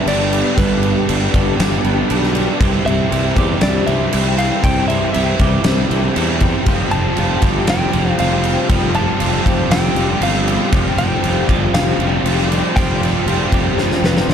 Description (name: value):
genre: rock, shoegaze and dream pop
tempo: 118 BPM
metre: 4/4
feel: straight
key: unclear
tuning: A4 = 439 Hz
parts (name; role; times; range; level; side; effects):
- direct-recorded clean electric guitar; melody; 0.0-14.3 s; B4 to A5; -24 LUFS; left 1 dB; analog delay
- twelve-string electric guitar; arpeggios; 0.0-14.3 s; F3 to G4; -27 LUFS; right 11 dB; lush chorus, analog delay
- overdriven electric guitar; riff; 0.0-14.3 s; C3 to G4; -22 LUFS; left 13 dB; ensemble chorus
- overdriven electric guitar; riff; 0.0-14.3 s; G2 to F4; -22 LUFS; right 11 dB; reverse reverb
- fuzz fingered electric bass; bass; 0.1-14.3 s; F1 to E2; -20 LUFS; left 1 dB; overdrive
- huge arena drum kit; drums; 0.1-14.3 s; crash cymbal, kick drum, snare drum; -18 LUFS; equal; none
- tight distorted guitar; riff; 6.7-14.3 s; F3 to F4; -25 LUFS; left 1 dB; distortion
room: studio reverb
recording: dark, warm production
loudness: -13 LUFS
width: side -8 dB against mid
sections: 0.0-14.3 A section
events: drum fill 13.8-14.3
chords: 0.0 G; 2.6 C; 6.7 Fsus2